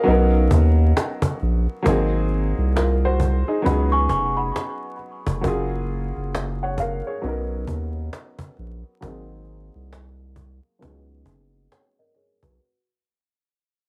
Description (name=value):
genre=lo-fi hip hop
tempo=67 BPM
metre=4/4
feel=swing 60% on 16ths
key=unclear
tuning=A4 = 440 Hz
part: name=warm upright piano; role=accompaniment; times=0.0-12.9 s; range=E#3 to F#5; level=-27 LUFS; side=equal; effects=cassette tape, low-pass filter
part: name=saturated sub bass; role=bass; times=0.1-12.6 s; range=E#1 to D#2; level=-23 LUFS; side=equal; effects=none
part: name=cajon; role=drums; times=0.1-12.6 s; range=none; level=-28 LUFS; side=equal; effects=none
part: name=worn celesta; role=second line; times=3.7-5.4 s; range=F#5 to C#6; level=-27 LUFS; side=equal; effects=cassette tape, analog delay
room=light reverb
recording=home recording on cassette, vinyl crackle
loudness=-22 LUFS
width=mono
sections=0.0-12.6 A section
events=fade-out 0.0-12.6; filter sweep on upright piano 0.0-12.6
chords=0.1 Bmaj7; 1.9 G#7; 3.6 C#7sus4; 5.4 F#maj7; 7.2 Bmaj7; 9.0 G#7; 10.8 C#7sus4